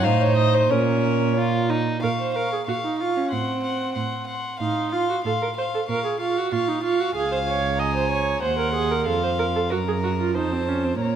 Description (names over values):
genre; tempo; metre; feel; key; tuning
quick classical-period movement for string quartet; 93 BPM; 2/4; straight; Bb minor; A4 = 440 Hz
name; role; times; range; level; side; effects
warm violin; melody; 0.0-11.2 s; C5 to Db6; -29 LUFS; left 8 dB; none
warm viola; accompaniment; 0.0-11.2 s; Bb3 to Eb5; -25 LUFS; right 4 dB; none
rich cello; bass; 0.0-11.2 s; Db2 to Bb2; -26 LUFS; right 5 dB; none
warm violin; second line; 0.1-11.2 s; Db4 to Ab5; -27 LUFS; left 2 dB; none
room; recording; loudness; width
moderate scoring stage reverb, RT60 1.8 s; close, detailed microphones; -20 LUFS; side -9 dB against mid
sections
0.0-2.0 A section; 2.0-11.2 A section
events
none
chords
0.1 Adim; 0.7 Bbm; 3.3 Am6; 4.6 F/A; 5.9 Bbm; 7.2 Db; 8.4 Cdim/Eb; 9.1 F5; 9.7 Gb; 10.4 F